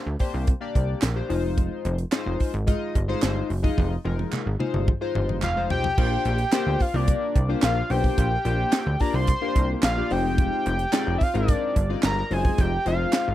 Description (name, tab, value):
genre	early-eighties boogie funk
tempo	109 BPM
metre	4/4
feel	straight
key	Bb mixolydian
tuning	A4 = 440 Hz
part	chorused polysynth	accompaniment	0.0-13.3 s	Ab3 to Eb5	-28 LUFS	left 4 dB	none
part	plucky analog bass	bass	0.1-13.3 s	F1 to D2	-26 LUFS	equal	none
part	tight funk drum kit	drums	0.2-13.3 s	crash cymbal, handclaps, hi-hat, kick drum, snare drum, toms	-24 LUFS	equal	none
part	group handclap	percussion	1.0-13.3 s	none	-35 LUFS	right 7 dB	none
part	fat analog lead	melody	5.4-13.3 s	D5 to C6	-26 LUFS	equal	tape echo
room	little or no reverb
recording	dry, close 1970s-style studio recording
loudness	-21 LUFS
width	side -13 dB against mid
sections	0.0-6.0 A section; 6.0-13.3 B section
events	drum fill 3.8-6.0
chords	0.0 Bb69; 1.3 Fm7; 6.0 Bb69; 10.1 Fm7